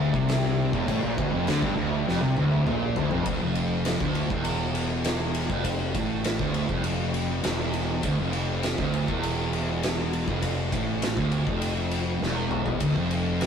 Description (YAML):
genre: stoner and doom metal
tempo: 101 BPM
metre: 4/4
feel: straight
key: D minor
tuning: A4 = 440 Hz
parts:
  - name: fuzz guitar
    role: riff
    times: 0.0-13.5 s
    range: D2 to D3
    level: -30 LUFS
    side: right 4 dB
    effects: distortion
  - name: fuzz guitar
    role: riff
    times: 0.0-3.3 s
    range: D2 to D3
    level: -30 LUFS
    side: right 1 dB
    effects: distortion
  - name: thick fuzz guitar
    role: riff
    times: 0.0-13.5 s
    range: D2 to D3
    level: -30 LUFS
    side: left 3 dB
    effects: distortion
  - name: fuzz fingered electric bass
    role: bass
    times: 0.0-13.5 s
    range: D1 to D2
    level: -30 LUFS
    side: equal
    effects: overdrive
  - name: oversized low-tuned drum kit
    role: drums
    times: 0.1-13.5 s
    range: crash cymbal, kick drum, ride cymbal, snare drum, toms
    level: -30 LUFS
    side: equal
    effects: none
room: moderate stone room reverb, RT60 1.2 s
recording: rough rehearsal-room recording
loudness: -24 LUFS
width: side -7 dB against mid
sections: 0.0-3.3 A section; 3.3-13.5 B section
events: drum fill 2.1-3.3, 12.2-12.8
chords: 0.0 Dm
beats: 0.29 | 0.88 1.48 2.07 2.67 | 3.27 3.86 4.46 5.06 | 5.65 6.25 6.85 7.44 | 8.04 8.64 9.23 9.83 | 10.43 11.02 11.62 12.21 | 12.81 13.40